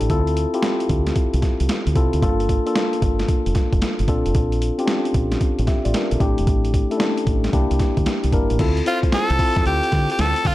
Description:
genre	R&B, new jack swing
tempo	113 BPM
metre	4/4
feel	swing 66% on 16ths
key	D minor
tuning	A4 = 440 Hz
part	mellow tine electric piano	accompaniment	0.0-10.5 s	A3 to E5	-22 LUFS	left 2 dB	none
part	deep dub fingered electric bass	bass	0.0-10.5 s	E1 to D3	-22 LUFS	equal	none
part	boom bap sampler-style drum kit	drums	0.0-10.5 s	crash cymbal, hi-hat, kick drum, snare drum	-21 LUFS	equal	overdrive
part	raspy tenor saxophone	melody	8.9-10.5 s	F4 to A4	-20 LUFS	equal	none
room	light reverb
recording	dark, warm production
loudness	-17 LUFS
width	side -16 dB against mid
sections	0.0-8.6 A section; 8.6-10.5 B section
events	none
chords	0.1 Dm7; 2.2 Gm7; 4.1 Bbmaj7; 6.2 A7sus4; 7.5 C7; 8.6 Dm7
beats	| 0.10 0.63 1.16 1.69 | 2.22 2.75 3.29 3.82 | 4.35 4.88 5.41 5.94 | 6.47 7.00 7.53 8.06 | 8.60 9.13 9.66 10.19

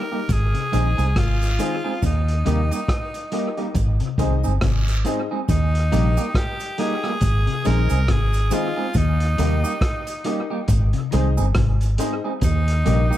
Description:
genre	roots reggae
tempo	69 BPM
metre	4/4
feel	swing 58% on 16ths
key	Ab major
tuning	A4 = 440 Hz
part	raspy tenor saxophone	melody	0.0-13.2 s	Eb4 to Bb4	-28 LUFS	equal	dub echo
part	warm upright piano	stabs	0.0-13.1 s	Eb4 to Eb5	-30 LUFS	left 6 dB	none
part	electric guitar at the edge of break-up	accompaniment	0.1-13.2 s	G3 to Ab4	-28 LUFS	right 3 dB	dub echo
part	electric guitar at the edge of break-up	arpeggios	0.3-13.1 s	Ab2 to Eb3	-29 LUFS	left 7 dB	phaser
part	vintage muted fingered electric bass	bass	0.3-13.1 s	G1 to Eb2	-19 LUFS	equal	none
part	vintage drum kit	drums	0.3-13.1 s	hi-hat, kick drum, rim click	-25 LUFS	equal	dub echo
part	cabasa and guiro	percussion	0.3-13.2 s	none	-37 LUFS	right 3 dB	none
room	little or no reverb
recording	echo-heavy mix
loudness	-18 LUFS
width	side -13 dB against mid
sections	0.0-5.5 A section; 5.5-13.2 B section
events	none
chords	0.3 Ab; 2.0 Eb; 3.8 Ab; 5.5 Eb; 7.2 Ab; 9.0 Eb; 10.7 Ab; 12.4 Eb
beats	0.29 1.16 | 2.03 2.89 3.76 4.63 | 5.49 6.36 7.22 8.09 | 8.96 9.82 10.69 11.55 | 12.42

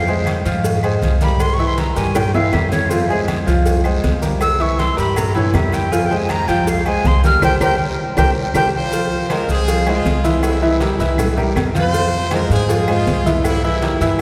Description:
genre	latin, salsa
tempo	160 BPM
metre	4/4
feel	straight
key	F harmonic minor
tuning	A4 = 439 Hz
part	breathy bright jazz flute	melody	0.0-8.7 s	Ab4 to F6	-24 LUFS	equal	none
part	clear upright piano	accompaniment	0.0-14.2 s	E3 to F5	-22 LUFS	equal	none
part	upright bass	bass	0.0-14.2 s	C2 to Ab2	-22 LUFS	equal	none
part	congas	percussion	0.1-14.2 s	none	-28 LUFS	equal	none
part	maracas	percussion	0.1-14.2 s	none	-40 LUFS	equal	none
part	agogo bells and timbales	percussion	0.3-14.2 s	none	-30 LUFS	equal	none
part	claves	percussion	0.3-14.2 s	none	-38 LUFS	equal	none
part	cowbell	percussion	0.3-14.2 s	none	-30 LUFS	equal	none
part	guiro	percussion	0.3-14.2 s	none	-38 LUFS	equal	none
part	brilliant horn section	melody	8.8-14.2 s	G3 to C5	-24 LUFS	equal	none
room	wet cathedral reverb, RT60 4.8 s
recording	recorded in a church or concert hall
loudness	-17 LUFS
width	mono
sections	0.0-8.9 A section; 8.9-14.2 B section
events	flute solo 0.0-8.9; drum fill 2.2-2.9, 7.8-8.9; band accent 7.4-8.9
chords	0.0 Fm; 1.4 C7; 2.9 Fm; 4.4 C7; 5.9 Fm; 7.4 C5; 8.9 Fm; 10.4 C7; 11.9 Fm; 13.4 C7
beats	0.27 0.65 1.03 | 1.40 1.78 2.16 2.53 | 2.91 3.29 3.66 4.04 | 4.42 4.79 5.17 5.55 | 5.92 6.30 6.68 7.05 | 7.43 7.80 8.18 8.56 | 8.93 9.31 9.69 10.06 | 10.44 10.81 11.19 11.56 | 11.94 12.32 12.69 13.07 | 13.45 13.82 14.20

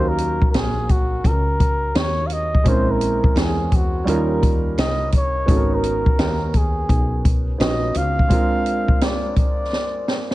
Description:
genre	hip hop, jazz-hop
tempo	85 BPM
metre	4/4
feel	swing 65% on 16ths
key	Eb dorian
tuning	A4 = 440 Hz
part	breathy flugelhorn	melody	0.0-10.3 s	Gb4 to F5	-24 LUFS	equal	none
part	dark grand piano	accompaniment	0.0-10.3 s	Gb3 to F5	-25 LUFS	right 2 dB	none
part	woody fretless electric bass	bass	0.0-8.3 s	Ab1 to Fb2	-24 LUFS	equal	none
part	open jazz drum kit	drums	0.2-10.3 s	hi-hat, kick drum, snare drum	-19 LUFS	equal	vintage 12-bit sampler grit
room	light reverb, studio ambience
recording	cassette tape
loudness	-17 LUFS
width	side -17 dB against mid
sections	0.0-10.3 A section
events	drum fill 9.7-10.3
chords	0.0 Ebm7; 2.7 Bbm7b5; 4.1 Eb7; 5.5 Abm11; 8.3 Bb7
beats	0.54 1.24 1.95 | 2.65 3.36 4.07 4.77 | 5.48 6.18 6.89 7.60 | 8.30 9.01 9.71

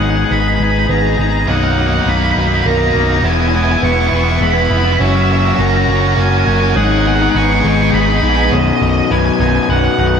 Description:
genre	rock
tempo	102 BPM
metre	3/4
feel	straight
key	B major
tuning	A4 = 440 Hz
part	octave-fuzz lead guitar	melody	0.0-10.2 s	D#5 to C#6	-18 LUFS	right 2 dB	distortion, digital delay
part	electric guitar through a small old amp	arpeggios	0.0-10.2 s	A#4 to B5	-23 LUFS	right 6 dB	phaser, digital delay
part	twangy electric guitar	arpeggios	0.0-10.2 s	B1 to D#4	-19 LUFS	left 4 dB	analog chorus, digital delay
part	crunchy overdriven guitar	riff	0.0-10.2 s	B1 to G#4	-18 LUFS	left 10 dB	slapback echo
part	picked electric bass	bass	0.0-10.2 s	B0 to A#1	-16 LUFS	right 1 dB	none
part	tight distorted guitar	riff	1.5-8.5 s	A#3 to G#4	-21 LUFS	right 10 dB	distortion, slapback echo
room	wet lush hall reverb, RT60 2.4 s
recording	big arena sound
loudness	-11 LUFS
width	side -7 dB against mid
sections	0.0-8.5 A section; 8.5-10.2 B section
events	build-up 0.0-8.5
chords	0.0 G#m; 1.5 Bmaj7; 3.2 E; 5.0 F#7; 6.8 G#m7; 8.5 B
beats	0.31 0.89 | 1.48 2.07 2.66 | 3.24 3.83 4.42 | 5.00 5.59 6.17 | 6.76 7.35 7.93 | 8.52 9.10 9.69

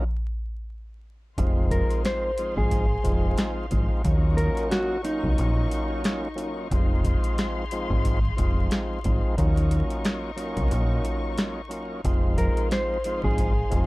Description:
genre	hip hop, boom-bap hip-hop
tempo	90 BPM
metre	4/4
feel	swing 58% on 16ths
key	F phrygian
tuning	A4 = 439 Hz
part	tonewheel organ	accompaniment	0.0-13.9 s	F3 to F4	-31 LUFS	equal	overdrive, slow rotary speaker, high-pass filter, low-pass filter
part	warm studio string section	sustained chords	1.4-13.9 s	Eb4 to Db6	-38 LUFS	left 4 dB	high-pass filter, low-pass filter
part	deep dub fingered electric bass	bass	1.4-13.9 s	F1 to Eb2	-25 LUFS	equal	none
part	booming analog drum machine	drums	1.4-13.9 s	hi-hat, kick drum, snare drum	-25 LUFS	equal	none
part	mellow electric guitar	melody	1.7-6.0, 12.4-13.9 s	Eb4 to C5	-29 LUFS	equal	high-pass filter, low-pass filter, tape echo
room	little or no reverb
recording	dry, gritty hardware recording, vinyl crackle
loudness	-22 LUFS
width	side -21 dB against mid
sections	0.0-1.4 A section; 1.4-13.9 B section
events	break 0.0-1.4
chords	0.0 N.C.; 1.4 Fm7; 4.0 Ebm7; 6.7 Fm7; 9.4 Ebm7; 12.0 Fm7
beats	0.04 0.71 | 1.38 2.04 2.71 3.38 | 4.04 4.71 5.38 6.04 | 6.71 7.38 8.04 8.71 | 9.38 10.04 10.71 11.38 | 12.04 12.71 13.38

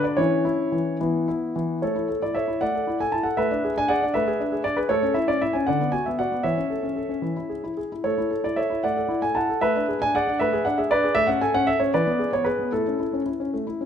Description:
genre	classical-period piano sonatina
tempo	72-80 BPM (dotted quarters)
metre	6/8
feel	rubato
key	A major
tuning	A4 = 440 Hz
part	warm concert grand piano	solo	0.0-13.9 s	D3 to A5	-21 LUFS	equal	none
room	moderate recital hall reverb, RT60 1.8 s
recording	close, detailed microphones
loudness	-21 LUFS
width	side -8 dB against mid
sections	0.0-1.8 A section; 1.8-13.9 B section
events	none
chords	0.2 C#m/E; 1.0 E5; 1.8 A; 3.4 E7/A; 4.9 A; 5.7 Bm/D; 6.4 A/E; 7.2 E; 8.0 A; 9.6 E9; 11.2 A; 11.9 E7; 12.7 A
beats	| 0.18 1.01 | 1.82 2.61 | 3.39 4.15 | 4.90 5.67 | 6.45 7.24 | 8.04 8.84 | 9.63 10.40 | 11.16 11.92 | 12.72 13.53

